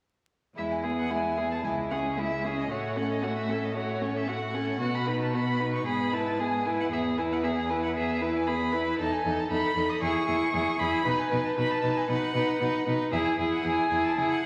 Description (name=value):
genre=quick classical-period movement for string quartet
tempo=114 BPM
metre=4/4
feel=rubato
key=E major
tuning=A4 = 440 Hz
part: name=rich violin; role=melody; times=0.6-14.5 s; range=C#5 to D#6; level=-34 LUFS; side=equal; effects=none
part: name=warm violin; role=second line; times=0.6-14.5 s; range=E4 to B4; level=-33 LUFS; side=equal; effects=none
part: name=rich viola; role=accompaniment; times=0.6-14.4 s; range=G#3 to E4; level=-33 LUFS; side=equal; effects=none
part: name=bright cello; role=bass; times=0.6-14.2 s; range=C#2 to C#3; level=-36 LUFS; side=equal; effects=none
room=wet recital hall reverb, RT60 1.6 s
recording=vinyl crackle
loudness=-28 LUFS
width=mono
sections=0.6-14.5 A section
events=none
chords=0.6 E; 1.6 C#m; 2.7 F#m/A; 4.8 B; 5.9 E/G#; 6.9 E; 9.0 Eadd11; 10.0 E; 11.1 B; 13.1 E